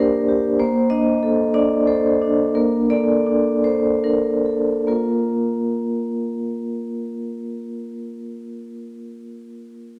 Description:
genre	classical, contemporary piece for solo vibraphone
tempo	46-66 BPM (dotted quarters)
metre	6/8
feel	rubato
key	Bb major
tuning	A4 = 440 Hz
part	vibraphone with medium mallets	solo	0.0-10.0 s	Bb3 to Eb5	-21 LUFS	equal	none
room	wet recital hall reverb, RT60 1.5 s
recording	none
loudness	-20 LUFS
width	mono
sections	0.0-4.9 A section; 4.9-9.9 B section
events	slowing down 0.0-4.9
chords	0.0 Bb6; 0.6 Bbmaj9; 4.9 Bb5

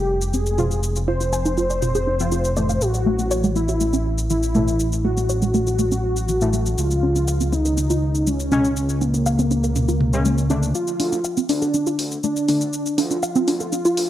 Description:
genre	melodic techno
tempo	121 BPM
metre	4/4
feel	straight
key	unclear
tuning	A4 = 440 Hz
part	wide unison lead	melody	0.0-14.1 s	Bb3 to C5	-23 LUFS	equal	analog delay
part	warbly dusty pluck	arpeggios	0.0-13.9 s	E3 to Ab5	-24 LUFS	right 1 dB	chorus, tape echo
part	dark detuned saw bass	bass	0.0-14.1 s	F1 to D2	-22 LUFS	equal	high-pass filter
part	techno drum kit	drums	0.2-14.1 s	hi-hat, shaker, toms	-28 LUFS	equal	overdrive, high-pass filter on perc, studio reverb, high-pass filter on toms, high-pass filter on hats
part	synth brass stab	stabs	0.6-12.6 s	A2 to F4	-25 LUFS	left 2 dB	chorus, tape echo
room	light reverb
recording	dry, gritty hardware recording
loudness	-18 LUFS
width	side -12 dB against mid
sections	0.0-10.8 A section; 10.8-14.1 B section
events	filter sweep on synth stab 0.0-10.8, 10.8-14.1; build-up 10.8-14.1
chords	0.0 Fm; 2.8 A5; 6.8 C#add9; 10.8 Dm

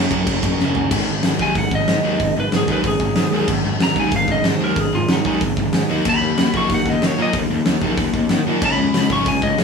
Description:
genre	punk rock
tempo	187 BPM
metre	4/4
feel	straight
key	unclear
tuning	A4 = 440 Hz
part	lightly driven lead guitar	melody	0.0-9.6 s	Eb4 to Db6	-22 LUFS	equal	none
part	crunchy overdriven guitar	riff	0.0-9.6 s	Gb2 to Eb4	-24 LUFS	right 8 dB	none
part	sludgy distorted guitar	riff	0.0-9.6 s	Gb2 to Eb4	-23 LUFS	left 9 dB	overdrive
part	fuzz picked electric bass	bass	0.0-9.6 s	Gb1 to Eb3	-24 LUFS	equal	overdrive
part	big rock drum kit	drums	0.1-9.6 s	crash cymbal, hi-hat, kick drum, snare drum, toms	-20 LUFS	equal	none
room	light reverb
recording	band playing live in one room, small room ambience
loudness	-16 LUFS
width	side -5 dB against mid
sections	0.9-9.6 A section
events	drum fill 0.6-0.9; lead electric guitar solo 0.9-9.6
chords	0.0 Gb5; 0.9 Ab5; 5.9 Eb5; 8.6 Db5

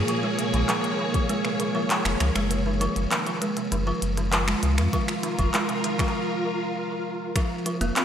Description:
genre	IDM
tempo	99 BPM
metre	4/4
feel	straight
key	unclear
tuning	A4 = 440 Hz
part	soft string machine	sustained chords	0.0-8.0 s	Bb2 to Db5	-29 LUFS	equal	ensemble chorus
part	warm sub bass	bass	0.0-7.9 s	F1 to Gb2	-25 LUFS	equal	none
part	buzzing kalimba	arpeggios	0.1-8.0 s	C3 to C4	-27 LUFS	right 2 dB	ping-pong delay
part	glitchy drum kit	drums	0.1-8.0 s	finger snaps, handclaps, hi-hat	-28 LUFS	equal	overdrive, small room ambience, gated reverb
part	electronic kick drum	drums	1.1-1.3, 4.9-7.5 s	none	-26 LUFS	equal	overdrive, small room ambience
room	wet lush hall reverb, RT60 2.0 s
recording	bright 1980s-style digital production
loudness	-22 LUFS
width	side -9 dB against mid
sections	0.0-7.4 A section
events	break 6.1-7.4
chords	0.0 Bbm7; 2.5 Gbmaj7; 7.4 F7(no3)

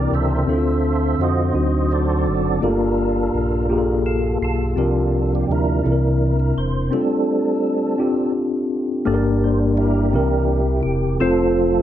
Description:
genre	gospel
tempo	56 BPM (dotted quarters)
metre	6/8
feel	straight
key	F major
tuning	A4 = 440 Hz
part	mellow tine electric piano	accompaniment	0.0-11.8 s	G2 to C5	-20 LUFS	left 2 dB	fast stereo tremolo
part	percussive tonewheel organ	sustained chords	0.0-11.8 s	E3 to E5	-22 LUFS	right 3 dB	fast rotary speaker, chorus vibrato
part	sub bass with octave	bass	0.0-11.8 s	E1 to F2	-22 LUFS	equal	none
room	moderate large studio reverb, RT60 1.4 s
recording	dark, warm production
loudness	-17 LUFS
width	side -11 dB against mid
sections	0.0-9.1 A section; 9.1-11.8 B section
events	tonewheel organ solo 0.0-9.1, 9.1-11.8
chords	0.5 Dm7; 1.6 D7b9; 2.6 Gm9; 4.8 C7sus4; 5.9 C9; 6.9 F6; 9.1 Gm; 10.1 C7; 11.2 F

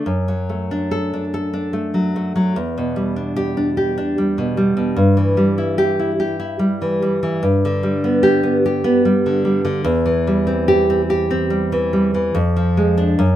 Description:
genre	romantic piece for solo classical guitar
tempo	73 BPM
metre	3/4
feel	rubato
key	unclear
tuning	A4 = 440 Hz
part	nylon-string guitar	solo	0.0-13.4 s	E2 to A4	-16 LUFS	equal	none
room	light reverb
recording	minimal, uncompressed stereo recording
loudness	-16 LUFS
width	side -12 dB against mid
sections	0.0-13.4 A section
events	none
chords	0.1 D/F#; 2.6 Em7; 5.0 Em/G; 7.4 G; 9.8 C/E; 12.3 Fm6

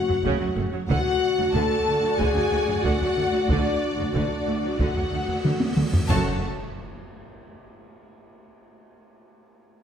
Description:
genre	cinematic, epic orchestral film score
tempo	92 BPM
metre	4/4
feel	straight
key	F# minor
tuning	A4 = 440 Hz
part	warm symphonic violin section	melody	0.0-6.5 s	D5 to A5	-34 LUFS	left 4 dB	none
part	rich studio violin section	second line	0.0-6.5 s	D5 to A5	-32 LUFS	left 4 dB	none
part	clear symphonic viola section	accompaniment	0.0-6.5 s	C#3 to F#4	-31 LUFS	right 3 dB	none
part	mellow French horn section	sustained chords	0.0-6.4 s	D4 to A4	-26 LUFS	left 3 dB	none
part	warm studio string section	sustained chords	0.0-6.5 s	A3 to F#5	-32 LUFS	right 2 dB	none
part	rich symphonic cello section	bass	0.1-6.5 s	D2 to F#2	-32 LUFS	right 3 dB	none
part	taiko ensemble	drums	0.1-6.2 s	none	-26 LUFS	equal	none
part	clear symphonic double bass section	bass	0.2-6.5 s	F#1 to D2	-31 LUFS	right 3 dB	none
part	cymbal swell and impact	sound effects	4.8-8.7 s	none	-38 LUFS	equal	none
room	moderate scoring stage reverb, RT60 1.7 s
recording	dark, warm production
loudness	-21 LUFS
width	side -8 dB against mid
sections	0.0-6.1 A section; 6.1-8.7 B section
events	cymbal swell 4.8-6.1; drum fill 5.5-6.1; impact 6.1-8.7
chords	0.0 F#m; 0.9 D; 6.1 F#m

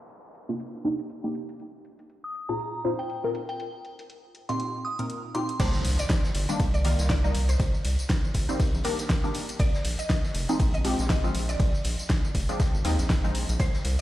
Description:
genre	deep house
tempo	120 BPM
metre	4/4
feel	swing 57% on 16ths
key	unclear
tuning	A4 = 441 Hz
part	downlifter and impact	sound effects	0.0-1.6, 5.6-7.6 s	none	-38 LUFS	equal	none
part	deep house drum kit	drums	0.1-14.0 s	crash cymbal, hi-hat, ride cymbal, snare drum, tambourine	-33 LUFS	equal	overdrive
part	filtered dub chord stab	stabs	0.5-13.6 s	Bb2 to C5	-31 LUFS	equal	phaser, analog chorus, sidechain pumping, digital delay
part	glassy synth bell	melody	2.2-5.6 s	G5 to Eb6	-34 LUFS	right 1 dB	chorus, vintage 12-bit sampler grit, digital delay
part	mallet-like synth pluck	melody	5.6-14.0 s	Bb4 to G5	-37 LUFS	left 1 dB	ensemble chorus, tape echo
part	round analog bass	bass	5.6-14.0 s	F1 to Eb2	-26 LUFS	equal	none
part	electronic kick drum	drums	5.6-13.7 s	none	-26 LUFS	equal	overdrive
part	raw garage drum kit	drums	5.6-14.0 s	hi-hat, snare drum	-41 LUFS	equal	sidechain pumping on hats, high-pass filter on hats, high-pass filter on snare, high-pass filter on room
room	light reverb, digital ambience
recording	played on a big sound system in a bare room, stone room reverb, low-pass filter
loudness	-24 LUFS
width	side -15 dB against mid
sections	0.0-5.6 A section; 5.6-14.0 B section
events	filter sweep on synth stab 0.0-5.6; filter sweep 0.0-5.6; drop 5.6-14.0; impact 5.6-7.6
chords	0.0 Cm9; 1.6 Bbsus4; 5.6 Cm9; 9.6 Bb7sus4

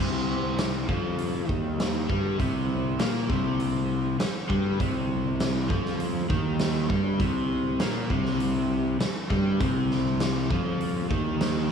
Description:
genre	indie rock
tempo	100 BPM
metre	4/4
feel	straight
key	C minor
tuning	A4 = 439 Hz
part	overdriven electric guitar	riff	0.0-11.7 s	C3 to Bb3	-27 LUFS	equal	none
part	fuzz fingered electric bass	bass	0.0-11.7 s	C2 to Bb2	-29 LUFS	equal	overdrive
part	raw garage drum kit	drums	0.6-11.5 s	hi-hat, kick drum, snare drum	-29 LUFS	equal	none
room	light reverb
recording	small room ambience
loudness	-24 LUFS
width	side -7 dB against mid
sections	0.0-11.7 A section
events	none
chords	0.0 Cm

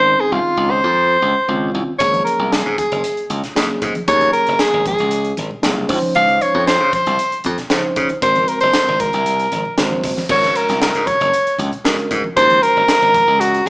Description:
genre	electric jazz fusion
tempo	116 BPM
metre	4/4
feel	straight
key	Ab mixolydian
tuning	A4 = 440 Hz
part	warm soprano saxophone	melody	0.0-13.7 s	F4 to F5	-14 LUFS	equal	none
part	mellow tine electric piano	accompaniment	0.0-13.2 s	Eb3 to C5	-23 LUFS	right 1 dB	none
part	glassy slap bass	bass	0.0-13.7 s	Gb1 to Db3	-22 LUFS	equal	none
part	crisp fusion drum kit	drums	2.0-13.7 s	crash cymbal, hi-hat, kick drum, snare drum	-22 LUFS	equal	none
part	congas	percussion	2.1-13.7 s	none	-32 LUFS	equal	none
room	moderate large studio reverb, RT60 1.3 s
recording	band playing live in one room, small speaker sound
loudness	-13 LUFS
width	side -27 dB against mid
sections	0.0-10.3 A section; 10.3-13.7 A section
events	none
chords	0.0 Dbmaj9; 2.0 Ab9sus4; 5.9 Dbmaj9; 8.2 Ab9; 10.3 Ab9sus4

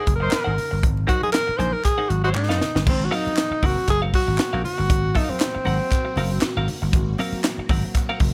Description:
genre	funk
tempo	118 BPM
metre	4/4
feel	swing 56% on 16ths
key	unclear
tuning	A4 = 439 Hz
part	breathy tenor saxophone	melody	0.0-6.7 s	C4 to C5	-26 LUFS	equal	none
part	semi-hollow electric guitar	accompaniment	0.0-8.2 s	C4 to Ab5	-32 LUFS	equal	lush chorus
part	vintage slap bass	bass	0.1-8.3 s	Gb1 to Ab2	-26 LUFS	equal	none
part	crisp fusion drum kit	drums	0.1-8.3 s	crash cymbal, handclaps, hi-hat, kick drum, snare drum	-26 LUFS	equal	none
part	congas	percussion	0.1-8.3 s	none	-37 LUFS	equal	none
part	clear horn section	second line	0.2-2.3 s	Gb3 to C5	-32 LUFS	equal	none
part	group handclap	percussion	0.3-8.1 s	none	-38 LUFS	equal	none
part	phased string machine	sustained chords	2.8-8.3 s	Gb3 to Gb4	-38 LUFS	equal	none
room	studio ambience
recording	none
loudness	-22 LUFS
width	mono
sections	0.0-2.9 A section; 2.9-8.3 B section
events	tenor saxophone solo 0.0-2.9; drum fill 2.4-2.9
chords	0.0 Ab9; 2.9 Ab13

